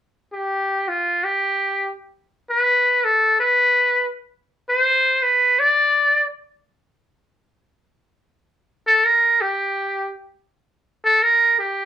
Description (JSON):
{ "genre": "jazz", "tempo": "free time", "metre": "none", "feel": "none", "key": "unclear", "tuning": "A4 = 440 Hz", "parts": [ { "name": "trumpet with metal mute", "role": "solo", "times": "0.3-11.9 s", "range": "F4 to D5", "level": "-16 LUFS", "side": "equal", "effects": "none" } ], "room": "moderate club reverb, RT60 0.6 s", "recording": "heard from further back in the room", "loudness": "-16 LUFS", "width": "side -10 dB against mid", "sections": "0.0-8.5 A section; 8.5-11.9 B section", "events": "none", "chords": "none", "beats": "free time" }